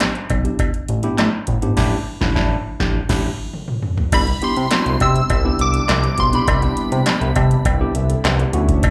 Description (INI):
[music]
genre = early-eighties boogie funk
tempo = 102 BPM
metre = 4/4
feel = straight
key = unclear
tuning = A4 = 440 Hz
[part]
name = bright tine electric piano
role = accompaniment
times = 0.0-8.9 s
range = A3 to A5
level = -26 LUFS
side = equal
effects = plate reverb, slapback echo
[part]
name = electro analog drum machine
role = drums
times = 0.0-8.9 s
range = crash cymbal, handclaps, hi-hat, kick drum, snare drum, toms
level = -23 LUFS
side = equal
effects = none
[part]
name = cowbell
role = percussion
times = 0.0-8.9 s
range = none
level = -27 LUFS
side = equal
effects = slapback echo
[part]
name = fat analog bass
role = bass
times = 0.3-8.9 s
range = G#1 to C3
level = -21 LUFS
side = equal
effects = none
[part]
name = shimmering bell with halo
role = melody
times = 4.1-7.5 s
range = B5 to E6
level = -24 LUFS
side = equal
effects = ensemble chorus, phaser, plate reverb, slapback echo
[part]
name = lush unison pad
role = sustained chords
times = 4.1-8.9 s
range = C3 to F#4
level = -31 LUFS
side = equal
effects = chorus
[sound]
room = light reverb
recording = live gig heard through the venue's PA, club reverb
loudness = -18 LUFS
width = mono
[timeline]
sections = 0.0-4.1 A section; 4.1-8.9 B section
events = band accent 1.8-4.1; tine electric piano fill 3.2-4.1, 7.1-8.8; drum fill 3.5-4.1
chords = 0.0 A7sus4; 4.1 Cmaj7